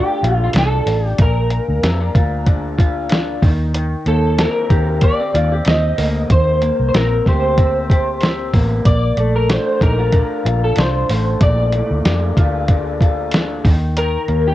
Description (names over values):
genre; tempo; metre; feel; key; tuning
indie pop, bedroom pop; 94 BPM; 4/4; swing 55% on 16ths; Bb major; A4 = 440 Hz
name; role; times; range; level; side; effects
electric guitar through a small old amp; melody; 0.0-14.5 s; F4 to Eb5; -20 LUFS; equal; ensemble chorus, cassette tape
electric guitar through a small old amp; accompaniment; 0.0-14.5 s; Bb2 to G4; -22 LUFS; left 2 dB; wide subtle chorus, warbly pitch drift, cassette tape
vintage muted fingered electric bass; bass; 0.2-14.5 s; A1 to F2; -18 LUFS; equal; none
lo-fi sampler-style drum kit; drums; 0.2-14.4 s; hi-hat, kick drum, snare drum; -15 LUFS; equal; none
room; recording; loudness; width
digital ambience; home recording on cassette, nothing above 10.8 kHz; -14 LUFS; side -14 dB against mid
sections
0.0-14.5 A section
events
none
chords
0.0 Bbmaj7; 3.4 Eb6; 8.9 Bbmaj7; 13.6 Eb5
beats
0.55 | 1.19 1.83 2.47 3.11 | 3.75 4.38 5.02 5.66 | 6.30 6.94 7.58 8.22 | 8.86 9.49 10.13 10.77 | 11.41 12.05 12.69 13.33 | 13.96